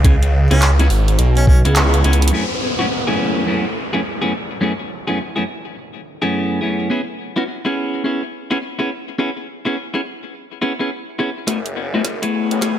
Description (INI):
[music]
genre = glitch hop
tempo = 105 BPM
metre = 4/4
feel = swing 63% on 16ths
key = F# minor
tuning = A4 = 440 Hz
[part]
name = clean electric guitar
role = stabs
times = 0.0-12.8 s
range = F#2 to G#4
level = -20 LUFS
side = left 1 dB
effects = sidechain pumping, low-pass filter, ping-pong delay
[part]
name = phased detuned saw bass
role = bass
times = 0.0-2.3, 11.5-12.8 s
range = F#1 to C#2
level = -14 LUFS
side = equal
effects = phaser, overdrive, high-pass filter
[part]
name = drum and bass drum kit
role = drums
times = 0.0-2.4, 11.5-12.8 s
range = handclaps, hi-hat, snare drum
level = -21 LUFS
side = right 1 dB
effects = high-pass filter on snare, high-pass filter on hats, high-pass filter on room
[part]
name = electronic kick drum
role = drums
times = 0.0-1.6, 11.5-12.8 s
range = none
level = -13 LUFS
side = equal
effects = high-pass filter on kick, high-pass filter on room
[part]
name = clear harmonica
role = melody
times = 0.5-1.6 s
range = C#4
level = -28 LUFS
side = equal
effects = ping-pong delay
[part]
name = downlifter and riser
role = sound effects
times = 2.3-6.9, 11.8-12.8 s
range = none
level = -25 LUFS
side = left 1 dB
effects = none
[sound]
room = light reverb, digital ambience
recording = none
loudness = -16 LUFS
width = side -10 dB against mid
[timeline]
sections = 0.0-2.3 A section; 2.3-11.5 B section; 11.5-12.8 C section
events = drop 0.0-2.3; band accent 1.8; drum fill 2.0, 11.5-12.8; build-up 11.5-12.8; filter sweep on clean electric guitar 11.5-12.8; riser 11.8-12.8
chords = 0.0 C#m7; 2.3 F#m11; 6.9 C#m7; 11.5 F#m11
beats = | 0.05 0.62 1.19 1.76 | 2.33 2.90 3.48 4.05 | 4.62 5.19 5.76 6.33 | 6.90 7.47 8.05 8.62 | 9.19 9.76 10.33 10.90 | 11.47 12.05 12.62